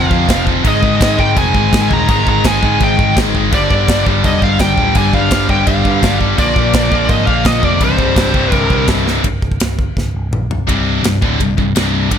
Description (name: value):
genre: heavy metal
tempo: 167 BPM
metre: 4/4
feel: straight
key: C minor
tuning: A4 = 440 Hz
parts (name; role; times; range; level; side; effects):
- high-gain lead guitar; melody; 0.0-8.9 s; C5 to Bb5; -18 LUFS; equal; distortion
- overdriven electric guitar; riff; 0.0-9.2 s; C2 to Bb3; -20 LUFS; left 1 dB; none
- scooped high-gain guitar; riff; 0.0-12.2 s; C2 to Bb3; -19 LUFS; left 13 dB; distortion
- scooped high-gain guitar; riff; 0.0-12.2 s; C2 to Bb3; -20 LUFS; right 15 dB; distortion
- overdriven picked electric bass; bass; 0.0-12.2 s; C1 to Ab2; -18 LUFS; equal; none
- modern studio drum kit; drums; 0.1-12.2 s; crash cymbal, kick drum, ride cymbal, snare drum, toms; -16 LUFS; equal; none
room: small room reverb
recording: none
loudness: -11 LUFS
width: side -8 dB against mid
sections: 0.0-9.2 A section; 9.2-10.7 B section; 10.7-12.2 C section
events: drum fill 9.1, 10.0-10.7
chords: 0.0 F5; 0.6 Ab5; 3.5 G5; 6.4 Bb; 7.8 C5; 9.2 N.C.; 10.7 C5